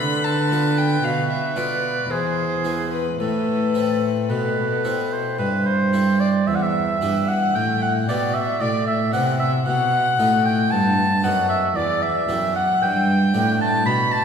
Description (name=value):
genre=classical, baroque-style sonata movement with continuo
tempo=57 BPM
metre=3/4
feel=rubato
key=A minor, E minor from 6.5 s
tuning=A4 = 442 Hz
part: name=warm violin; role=melody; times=0.0-14.2 s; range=A4 to B5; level=-28 LUFS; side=left 5 dB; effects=none
part: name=clear oboe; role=second line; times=0.0-14.2 s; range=G#4 to B5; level=-22 LUFS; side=right 1 dB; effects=none
part: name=harpsichord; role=accompaniment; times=0.0-14.2 s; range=E2 to A4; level=-26 LUFS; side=left 2 dB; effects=none
part: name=dark cello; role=bass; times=0.0-14.2 s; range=E2 to D3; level=-23 LUFS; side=right 1 dB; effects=none
room=wet concert hall reverb, RT60 2.2 s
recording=heard from further back in the room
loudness=-18 LUFS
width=side -7 dB against mid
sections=0.0-6.5 A section; 6.5-14.2 A section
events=none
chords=0.0 Bm7b5/D; 2.1 E; 3.2 Am; 6.5 Em; 9.7 B7; 11.8 Em; 12.8 G